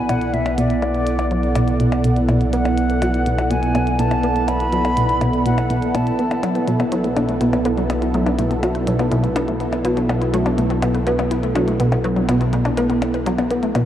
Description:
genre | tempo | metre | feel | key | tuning
ambient, sequencer-driven space music | 123 BPM | 4/4 | straight | B minor | A4 = 438 Hz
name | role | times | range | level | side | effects
concert flute | melody | 0.0-6.4 s | D5 to B5 | -24 LUFS | equal | shimmer reverb, ping-pong delay
sweeping resonant pad | sustained chords | 0.0-13.9 s | B3 to F#5 | -22 LUFS | right 2 dB | chorus, shimmer reverb
analog drone | bass | 0.1-13.9 s | B1 | -24 LUFS | equal | chorus
plucky analog bass | riff | 0.1-13.9 s | B2 to B3 | -22 LUFS | equal | ensemble chorus, shimmer reverb, ping-pong delay
electronic hi-hat and percussion blips | percussion | 0.1-13.8 s | none | -30 LUFS | left 2 dB | ping-pong delay
wide unison pluck | arpeggios | 6.4-13.8 s | F#3 to B4 | -24 LUFS | left 2 dB | auto-pan, shimmer reverb, ping-pong delay
room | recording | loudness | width
wet lush hall reverb, RT60 3.1 s | worn, warbling old tape, cassette tape, warbly pitch drift | -16 LUFS | side -11 dB against mid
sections
0.0-13.9 A section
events
none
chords
0.0 Bm

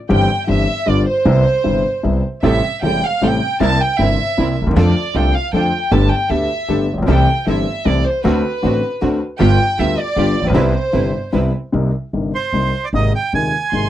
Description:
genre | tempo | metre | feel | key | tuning
tango | 154 BPM | 3/4 | rubato | C major | A4 = 442 Hz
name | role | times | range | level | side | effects
warm chamber violin section | second line | 0.1-11.3, 13.7-13.9 s | B4 to C6 | -20 LUFS | right 2 dB | none
warm upright piano | accompaniment | 0.1-13.9 s | Eb1 to G4 | -18 LUFS | left 3 dB | none
upright bass | bass | 0.1-13.9 s | E1 to F2 | -19 LUFS | right 1 dB | none
warm studio string section | stabs | 2.4-11.5 s | B3 to B4 | -24 LUFS | right 7 dB | none
bandoneon | melody | 12.3-13.9 s | C5 to Ab5 | -19 LUFS | right 5 dB | none
room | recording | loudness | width
little or no reverb | dry, close 1970s-style studio recording | -14 LUFS | side -12 dB against mid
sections
0.0-11.7 A section; 11.7-13.9 B section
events
violin section solo 0.0-11.7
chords
0.1 C/G; 0.9 G7; 1.3 Cmaj7; 2.4 Am7; 3.6 C7; 4.8 F6; 5.9 Gadd9; 7.1 C6; 8.2 D7; 9.4 G7; 10.5 Cmaj7; 11.7 Cm7; 12.9 Abadd9

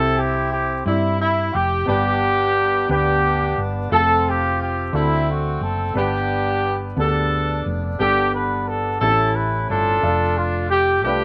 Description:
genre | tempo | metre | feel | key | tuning
slow gospel | 59 BPM (dotted quarters) | 6/8 | straight | unclear | A4 = 440 Hz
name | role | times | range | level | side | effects
mellow horn section | melody | 0.0-11.2 s | A3 to B4 | -21 LUFS | equal | slapback echo
warm concert grand piano | accompaniment | 0.0-11.2 s | G2 to D5 | -29 LUFS | equal | slapback echo
hollow-body short-scale fingered electric bass | bass | 0.0-11.2 s | F1 to G2 | -26 LUFS | equal | none
room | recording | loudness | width
little or no reverb | recorded outdoors, with no room sound | -20 LUFS | mono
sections
0.0-11.2 A section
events
none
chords
0.0 C; 1.9 G; 3.9 F; 4.9 D7; 5.9 G; 9.0 A7; 10.0 Dm/F

